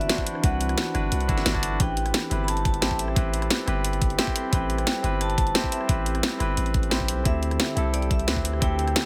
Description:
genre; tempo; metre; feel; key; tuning
liquid drum and bass; 176 BPM; 4/4; straight; A dorian; A4 = 441 Hz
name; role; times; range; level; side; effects
vibraphone with medium hard mallets; melody; 0.0-9.1 s; D5 to B5; -35 LUFS; equal; digital delay
barky tine electric piano; accompaniment; 0.0-9.1 s; C4 to D5; -32 LUFS; equal; overdrive, dub echo
glassy FM pad; sustained chords; 0.0-9.1 s; D3 to A4; -38 LUFS; equal; ensemble chorus, built-in reverb, sidechain pumping
long sustained 808-style bass; bass; 0.0-8.9 s; G1 to D2; -29 LUFS; equal; tube saturation
drum and bass drum kit; drums; 0.0-9.0 s; hi-hat, rim click, snare drum; -29 LUFS; equal; none
electronic kick drum; drums; 0.2-8.7 s; none; -28 LUFS; equal; none
room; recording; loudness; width
digital ambience; none; -24 LUFS; mono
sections
0.0-9.1 A section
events
none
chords
0.0 Cmaj9#11; 1.8 Am7; 7.3 D7sus4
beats
0.10 | 0.44 0.78 1.12 1.46 | 1.80 2.14 2.48 2.82 | 3.16 3.50 3.85 4.19 | 4.53 4.87 5.21 5.55 | 5.89 6.23 6.57 6.91 | 7.25 7.60 7.94 8.28 | 8.62 8.96

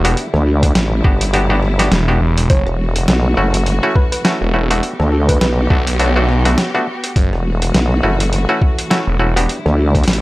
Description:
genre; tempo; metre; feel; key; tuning
glitch hop; 103 BPM; 4/4; swing 57% on 16ths; F# phrygian; A4 = 438 Hz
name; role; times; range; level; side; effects
clear studio string section; sustained chords; 0.0-10.2 s; D3 to G4; -24 LUFS; left 1 dB; vintage 12-bit sampler grit, sidechain pumping
muted clav; stabs; 0.0-9.6 s; A3 to G4; -19 LUFS; equal; overdrive, sidechain pumping, analog delay
phased detuned saw bass; bass; 0.0-9.5 s; E1 to B1; -15 LUFS; equal; phaser
boom bap sampler-style drum kit; drums; 0.0-10.2 s; hi-hat, rim click, snare drum; -19 LUFS; equal; none
vowel-sweep wobble bass; bass; 0.3-10.2 s; E1 to D2; -14 LUFS; equal; chorus
electronic kick drum; drums; 0.6-10.0 s; none; -14 LUFS; equal; none
woody wave-folded pluck; melody; 2.5-6.6 s; A4 to C#5; -24 LUFS; equal; chorus, analog delay
room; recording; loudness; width
little or no reverb; dry, gritty hardware recording; -12 LUFS; side -19 dB against mid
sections
0.0-10.2 A section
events
none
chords
0.2 Em7; 2.5 F#m7; 4.8 Gmaj7; 7.2 F#m7; 9.5 Em7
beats
| 0.17 0.75 1.33 1.92 | 2.50 3.08 3.67 4.25 | 4.83 5.41 6.00 6.58 | 7.16 7.74 8.32 8.91 | 9.49 10.07

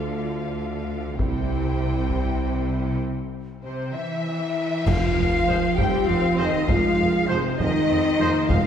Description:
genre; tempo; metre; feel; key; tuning
cinematic, epic orchestral film score; 66 BPM (dotted quarters); 6/8; straight; F minor from 4.9 s; A4 = 438 Hz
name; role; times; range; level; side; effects
warm symphonic violin section; melody; 0.0-8.7 s; C5 to G5; -34 LUFS; left 4 dB; none
rich symphonic violin section; second line; 0.0-8.7 s; A4 to G5; -32 LUFS; left 3 dB; none
dark symphonic viola section; accompaniment; 0.0-3.0, 5.8-8.7 s; Ab3 to F4; -31 LUFS; right 1 dB; none
mellow French horn section; sustained chords; 0.0-8.7 s; G3 to G4; -26 LUFS; left 1 dB; none
clear tuba; bass; 0.0-8.6 s; F1 to D2; -32 LUFS; right 2 dB; none
rich symphonic cello section; bass; 0.0-8.7 s; C3 to G3; -29 LUFS; right 2 dB; none
warm symphonic double bass section; bass; 0.0-8.6 s; C2 to F2; -28 LUFS; right 1 dB; none
taiko ensemble; drums; 1.2-8.7 s; none; -28 LUFS; equal; none
cymbal swell, clash cymbals and concert bass drum; percussion; 1.2-6.0 s; none; -32 LUFS; equal; none
hollow concert flute; second line; 3.6-8.7 s; C5 to G5; -30 LUFS; left 2 dB; none
timpani; percussion; 4.9-5.7, 8.5-8.7 s; F2; -30 LUFS; left 2 dB; none
warm trombone section; sustained chords; 5.5-8.3 s; F3 to Ab3; -35 LUFS; right 3 dB; none
clear trumpet section; stabs; 5.5-8.3 s; C5; -31 LUFS; right 1 dB; none
room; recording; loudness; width
wet scoring stage reverb, RT60 2.0 s; heard from further back in the room; -20 LUFS; side -8 dB against mid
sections
0.0-4.9 A section; 4.9-8.7 B section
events
break 3.0-4.9; band accent 4.9-5.5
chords
0.0 Dm; 1.2 C; 4.9 Fm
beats
0.30 | 1.19 2.10 | 3.02 3.94 | 4.86 5.78 | 6.68 7.59 | 8.50

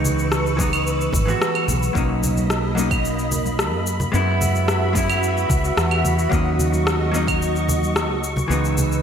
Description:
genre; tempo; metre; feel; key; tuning
sunset chillout; 110 BPM; 4/4; straight; B major; A4 = 440 Hz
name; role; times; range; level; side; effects
vintage hollow-body jazz guitar; accompaniment; 0.0-9.0 s; E3 to F#4; -24 LUFS; moving between left 2 dB and right 5 dB; auto-pan, vintage 12-bit sampler grit, ping-pong delay
soft string machine; sustained chords; 0.0-9.0 s; A#3 to E6; -25 LUFS; right 1 dB; ensemble chorus
mellow fretless electric bass; bass; 0.0-9.0 s; G#1 to F#2; -22 LUFS; equal; tube saturation, wide subtle chorus
congas; percussion; 0.0-8.9 s; none; -28 LUFS; equal; none
electronic shaker, rim click and claves; drums; 0.1-9.0 s; none; -25 LUFS; left 1 dB; overdrive, gated reverb
electronic kick drum; drums; 0.6-7.4 s; none; -24 LUFS; equal; overdrive
room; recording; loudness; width
moderate lush hall reverb, RT60 2.5 s; bright 1980s-style digital production; -18 LUFS; side -8 dB against mid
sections
0.0-9.0 A section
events
kick drops out 8.5-9.0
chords
0.0 C#m7; 2.0 Bmaj7; 3.9 F#7sus4; 6.3 D#m7; 8.2 C#m7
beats
0.32 0.87 1.41 | 1.96 2.50 3.05 3.59 | 4.14 4.68 5.23 5.78 | 6.32 6.87 7.41 7.96 | 8.50

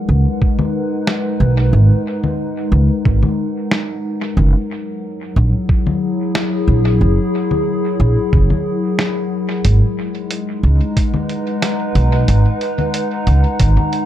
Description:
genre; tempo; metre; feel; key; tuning
ambient dub; 91 BPM; 4/4; straight; G# minor; A4 = 440 Hz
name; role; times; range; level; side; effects
warbly tape-like pad; sustained chords; 0.0-14.1 s; F#3 to A#5; -19 LUFS; left 2 dB; chorus, built-in reverb
upright bass; bass; 0.1-13.8 s; F#1 to C#2; -12 LUFS; right 1 dB; tube saturation
electronic kick drum; drums; 0.4-13.7 s; none; -15 LUFS; right 1 dB; none
lo-fi sampler-style drum kit; drums; 0.6-14.1 s; congas, hi-hat, snare drum; -22 LUFS; left 2 dB; dub echo
room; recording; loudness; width
light reverb; echo-heavy mix; -14 LUFS; side -12 dB against mid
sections
0.0-14.1 A section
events
none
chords
0.0 G#m9; 4.4 F#9; 9.6 G#m9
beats
0.41 1.07 | 1.73 2.39 3.05 3.71 | 4.37 5.03 5.69 6.35 | 7.01 7.67 8.33 8.99 | 9.64 10.30 10.96 11.62 | 12.28 12.94 13.60

